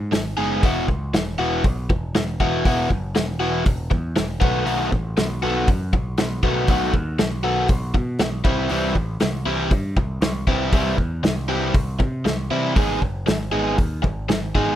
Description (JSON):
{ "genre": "indie rock", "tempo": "119 BPM", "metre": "4/4", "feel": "straight", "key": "E major", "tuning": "A4 = 439 Hz", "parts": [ { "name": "growling picked electric bass", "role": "bass", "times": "0.0-14.8 s", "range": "E1 to C3", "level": "-26 LUFS", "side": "equal", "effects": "overdrive" }, { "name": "overdriven electric guitar", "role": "riff", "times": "0.1-14.8 s", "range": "D#3 to G#4", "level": "-23 LUFS", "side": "equal", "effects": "none" }, { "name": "loose indie drum kit", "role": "drums", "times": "0.1-14.7 s", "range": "hi-hat, kick drum, snare drum", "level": "-21 LUFS", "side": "equal", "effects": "none" } ], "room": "small room ambience", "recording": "rough home demo mix", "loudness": "-19 LUFS", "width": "side -12 dB against mid", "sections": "0.0-12.8 A section; 12.8-14.8 A section", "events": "none", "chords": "0.0 G#m; 0.6 Esus2; 4.4 B7; 8.5 C; 12.8 G#m" }